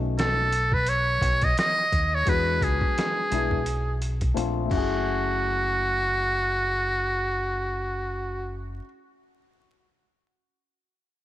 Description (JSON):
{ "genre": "hip hop, jazz-hop", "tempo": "86 BPM", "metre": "4/4", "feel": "swing 57% on 16ths", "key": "F# minor", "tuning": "A4 = 440 Hz", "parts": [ { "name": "dark grand piano", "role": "accompaniment", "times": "0.0-8.8 s", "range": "G#3 to G#4", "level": "-32 LUFS", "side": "left 8 dB", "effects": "none" }, { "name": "deep dub fingered electric bass", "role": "bass", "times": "0.0-8.8 s", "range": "F#1 to E2", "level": "-29 LUFS", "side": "equal", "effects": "none" }, { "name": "trumpet with metal mute", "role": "melody", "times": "0.2-8.6 s", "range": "F#4 to D#5", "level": "-25 LUFS", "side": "right 1 dB", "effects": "none" }, { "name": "trip hop sampler-style drum kit", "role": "drums", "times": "0.2-4.9 s", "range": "crash cymbal, hi-hat, kick drum, snare drum", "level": "-28 LUFS", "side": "equal", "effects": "none" } ], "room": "light reverb, small room ambience", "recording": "1960s-style stereo, vinyl crackle", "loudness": "-22 LUFS", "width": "side -13 dB against mid", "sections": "0.0-5.1 A section; 5.1-7.8 B section", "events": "drum fill 4.4-5.1", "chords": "0.0 B7; 2.3 E7; 4.4 A#maj7; 4.7 F#m9" }